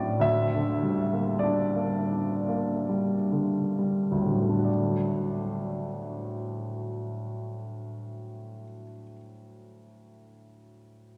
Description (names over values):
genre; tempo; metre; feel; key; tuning
classical, romantic nocturne for solo piano; 31-53 BPM; 3/4; rubato; D major; A4 = 440 Hz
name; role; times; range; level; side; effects
warm grand piano; solo; 0.0-11.2 s; D2 to E5; -29 LUFS; equal; none
room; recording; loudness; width
wet cathedral reverb, RT60 5.4 s; none; -28 LUFS; mono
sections
0.0-4.7 A section; 4.7-9.4 B section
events
slowing down 0.0-4.7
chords
0.2 Gm/D; 4.7 D